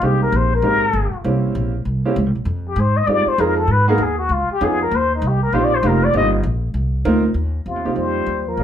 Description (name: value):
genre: jazz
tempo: 196 BPM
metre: 4/4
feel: swing 63% on 8ths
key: Eb major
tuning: A4 = 441 Hz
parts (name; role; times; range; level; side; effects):
- trumpet with plunger mute; melody; 0.0-8.6 s; Eb4 to Eb5; -19 LUFS; left 3 dB; none
- warm grand piano; accompaniment; 0.0-8.6 s; Ab3 to Bb4; -21 LUFS; right 3 dB; none
- upright bass; bass; 0.0-8.6 s; F1 to Ab2; -19 LUFS; equal; none
- warm trombone; second line; 7.7-8.6 s; C3 to G3; -29 LUFS; right 3 dB; none
room: moderate club reverb, RT60 0.7 s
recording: heard from further back in the room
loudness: -16 LUFS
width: side -9 dB against mid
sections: 0.0-7.4 A section; 7.4-8.6 B section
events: muted trumpet solo 0.0-7.4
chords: 0.0 Abmaj7; 1.2 C7b9; 2.5 Fm7; 3.7 Abm7; 4.3 Db9; 4.9 Eb69